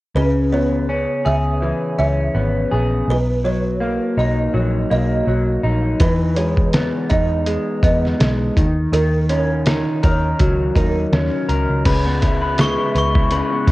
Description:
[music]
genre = indie pop, bedroom pop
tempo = 82 BPM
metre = 4/4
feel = swing 55% on 16ths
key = C# dorian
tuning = A4 = 440 Hz
[part]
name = vintage muted picked electric bass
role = bass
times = 0.1-13.7 s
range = G#1 to E2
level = -20 LUFS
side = equal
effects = tube saturation
[part]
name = buzzing kalimba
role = second line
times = 0.2-11.1 s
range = A#4 to E5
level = -24 LUFS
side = right 2 dB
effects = ensemble chorus, cassette tape, tape echo
[part]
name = electric guitar through a small old amp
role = accompaniment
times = 0.2-13.7 s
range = C#3 to B4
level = -20 LUFS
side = left 1 dB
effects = wide subtle chorus, warbly pitch drift, cassette tape
[part]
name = lo-fi sampler-style drum kit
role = drums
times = 6.0-13.7 s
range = crash cymbal, hi-hat, kick drum, snare drum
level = -18 LUFS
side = equal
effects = cassette tape
[part]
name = glockenspiel with brass mallets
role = melody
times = 12.6-13.7 s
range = C#6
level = -22 LUFS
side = left 3 dB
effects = analog chorus, cassette tape
[sound]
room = little or no reverb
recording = home recording on cassette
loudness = -15 LUFS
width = side -18 dB against mid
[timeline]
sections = 0.2-11.9 A section; 11.9-13.7 B section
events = none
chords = 0.2 C#m7; 3.1 Bmaj7; 6.0 Emaj7; 8.6 D#m7; 11.9 C#m7

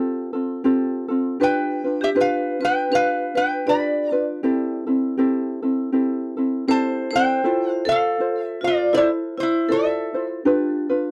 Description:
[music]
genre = Hawaiian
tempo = 80 BPM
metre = 4/4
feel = swing 59% on 8ths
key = C major, F major from 7.4 s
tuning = A4 = 443 Hz
[part]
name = ukulele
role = accompaniment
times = 0.0-11.1 s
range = C4 to C5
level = -24 LUFS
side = equal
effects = none
[part]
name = lap resonator guitar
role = melody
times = 1.4-10.3 s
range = E4 to B5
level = -24 LUFS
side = equal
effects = none
[part]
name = vibraphone with hard mallets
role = second line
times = 1.4-10.2 s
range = E4 to D5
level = -29 LUFS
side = equal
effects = tape echo
[sound]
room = little or no reverb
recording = dry, close 1970s-style studio recording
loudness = -21 LUFS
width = mono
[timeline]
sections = 0.0-7.4 A section; 7.4-11.1 B section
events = none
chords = 0.0 Fadd9; 1.4 G7; 4.4 C6; 7.4 Fmaj7; 10.4 G7

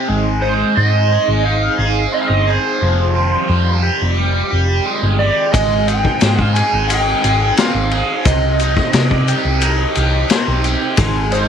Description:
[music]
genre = psychedelic rock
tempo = 88 BPM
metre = 4/4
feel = straight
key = unclear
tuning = A4 = 443 Hz
[part]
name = ensemble organ-string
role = sustained chords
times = 0.0-11.5 s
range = Eb3 to Ab4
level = -26 LUFS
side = right 11 dB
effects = ensemble chorus
[part]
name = cranked stack guitar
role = riff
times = 0.0-11.5 s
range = C3 to D5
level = -18 LUFS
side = equal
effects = overdrive, phaser
[part]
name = hollow-body short-scale picked electric bass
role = bass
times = 0.1-11.5 s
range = F1 to C3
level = -17 LUFS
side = equal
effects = none
[part]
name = lead guitar through a small cranked amp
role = melody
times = 0.4-11.5 s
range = C5 to Ab5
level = -18 LUFS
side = right 2 dB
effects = wah, overdrive, slapback echo
[part]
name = vintage drum kit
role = drums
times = 5.5-11.5 s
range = kick drum, ride cymbal, snare drum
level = -18 LUFS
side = left 4 dB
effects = none
[part]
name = maracas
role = percussion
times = 5.5-11.5 s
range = none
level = -30 LUFS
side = left 13 dB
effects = none
[sound]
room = little or no reverb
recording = 1960s-style stereo with parts hard left and right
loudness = -13 LUFS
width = side -8 dB against mid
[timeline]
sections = 0.0-11.5 A section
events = none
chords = 0.1 Ab; 2.8 Fmadd9; 5.5 Ab; 8.3 Cmadd9

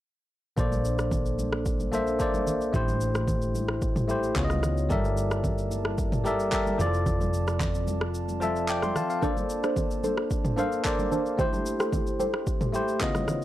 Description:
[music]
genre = amapiano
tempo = 111 BPM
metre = 4/4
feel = straight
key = unclear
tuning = A4 = 440 Hz
[part]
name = bell-like tine electric piano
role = accompaniment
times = 0.6-13.4 s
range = Db3 to D6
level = -29 LUFS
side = left 1 dB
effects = none
[part]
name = glass harmonica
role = sustained chords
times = 0.6-13.4 s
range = A3 to A5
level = -34 LUFS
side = equal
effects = sidechain pumping
[part]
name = hollow-body short-scale fingered electric bass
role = bass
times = 0.6-8.9 s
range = F1 to Db2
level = -30 LUFS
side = equal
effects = none
[part]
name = deep house drum kit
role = drums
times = 0.6-13.4 s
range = handclaps, kick drum, rim click, shaker, toms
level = -30 LUFS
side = equal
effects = none
[part]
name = congas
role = percussion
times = 0.6-13.4 s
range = none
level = -36 LUFS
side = right 1 dB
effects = none
[part]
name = deep mellow chord stab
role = stabs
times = 9.2-12.4 s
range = D4 to C5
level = -31 LUFS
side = right 1 dB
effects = chorus, tape echo
[sound]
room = little or no reverb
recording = dry, gritty hardware recording, cassette tape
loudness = -24 LUFS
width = side -14 dB against mid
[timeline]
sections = 0.6-13.4 A section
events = kick muted 8.1-9.2; tine electric piano fill 8.1-9.2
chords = 0.6 Bbmaj9; 2.7 Am7; 4.4 Db9; 4.9 Gm69; 6.8 F6; 9.2 Bbmaj9; 11.4 Am7

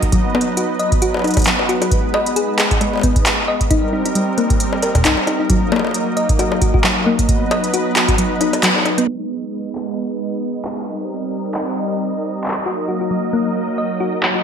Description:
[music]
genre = IDM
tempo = 134 BPM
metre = 4/4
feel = swing 56% on 16ths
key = G# minor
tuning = A4 = 438 Hz
[part]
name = warm analog pad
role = sustained chords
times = 0.0-14.4 s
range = F#3 to D#5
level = -21 LUFS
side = right 1 dB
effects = chorus, sidechain pumping
[part]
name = electronic kick drum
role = drums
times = 0.0-8.2 s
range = none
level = -17 LUFS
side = equal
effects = none
[part]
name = organic electronic drum kit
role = drums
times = 0.0-14.3 s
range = bongos, handclaps, hi-hat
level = -20 LUFS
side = left 1 dB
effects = overdrive, low-pass filter on hats, low-pass filter on perc, low-pass filter on snare, low-pass filter on room, gated reverb, ping-pong delay
[part]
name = thumb-piano-like synth pluck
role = arpeggios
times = 0.1-9.1, 12.7-14.4 s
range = F#3 to D#5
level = -20 LUFS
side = left 2 dB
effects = chorus, digital delay
[sound]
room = moderate lush hall reverb, RT60 2.0 s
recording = bright 1980s-style digital production, low-pass filter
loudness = -15 LUFS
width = side -7 dB against mid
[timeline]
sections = 0.0-9.1 A section; 9.1-14.4 B section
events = kick drops out 8.2-9.1; band accent 8.6; filter sweep 9.1-14.4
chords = 0.1 B; 1.9 G#m; 3.7 Cm7; 5.5 D#m; 7.3 B; 9.1 G#m; 10.9 Cm7; 12.7 D#m

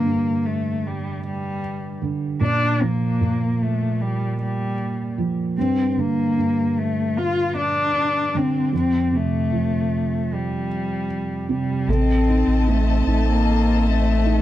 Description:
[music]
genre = pop ballad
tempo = 76 BPM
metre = 4/4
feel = straight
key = G minor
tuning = A4 = 440 Hz
[part]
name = dark cello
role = melody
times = 0.0-14.4 s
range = G3 to F4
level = -22 LUFS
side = left 2 dB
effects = none
[part]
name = felt-muted upright piano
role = accompaniment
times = 0.0-14.4 s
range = F2 to A4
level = -24 LUFS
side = right 4 dB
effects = none
[part]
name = dark studio string section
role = sustained chords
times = 11.9-14.4 s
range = C4 to A5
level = -27 LUFS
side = left 3 dB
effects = none
[part]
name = warm sub bass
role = bass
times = 11.9-14.4 s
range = A1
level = -19 LUFS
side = equal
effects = none
[sound]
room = moderate booth ambience, RT60 0.2 s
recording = dry, close 1970s-style studio recording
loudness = -19 LUFS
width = side -13 dB against mid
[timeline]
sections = 0.0-11.9 A section; 11.9-14.4 B section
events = none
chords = 0.0 G5; 2.4 Bb5; 5.6 Gm; 8.7 Fadd9; 11.9 Adim

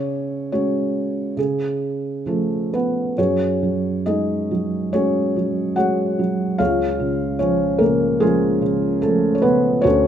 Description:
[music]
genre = classical, lyrical solo piano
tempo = 64-75 BPM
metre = 4/4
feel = rubato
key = unclear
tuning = A4 = 440 Hz
[part]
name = felt-muted upright piano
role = solo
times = 0.0-10.1 s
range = C#2 to F#5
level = -18 LUFS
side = equal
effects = none
[sound]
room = light reverb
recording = minimal, uncompressed stereo recording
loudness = -18 LUFS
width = side -9 dB against mid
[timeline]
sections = 0.0-3.2 A section; 3.2-10.1 B section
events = none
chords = 0.0 C#sus4; 1.4 C#; 3.2 F#sus2; 6.6 C#

